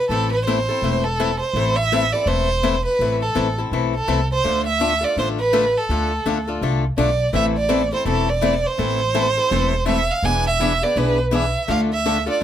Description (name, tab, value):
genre	acoustic string swing (jazz manouche)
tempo	166 BPM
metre	4/4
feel	swing 61% on 8ths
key	A minor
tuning	A4 = 441 Hz
part	rich violin	melody	0.0-12.4 s	A4 to G#5	-20 LUFS	right 3 dB	none
part	picked swing-style acoustic guitar	accompaniment	0.1-12.4 s	D3 to A4	-23 LUFS	left 6 dB	none
part	upright bass	bass	0.1-12.3 s	E1 to D2	-23 LUFS	equal	none
part	picked steel-string acoustic guitar	accompaniment	7.3-12.2 s	D3 to B4	-29 LUFS	right 6 dB	none
room	light reverb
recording	none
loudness	-17 LUFS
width	side -10 dB against mid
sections	0.0-12.4 A section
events	none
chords	0.0 Am; 4.4 Dm; 7.3 Am; 10.2 E7; 11.7 Dm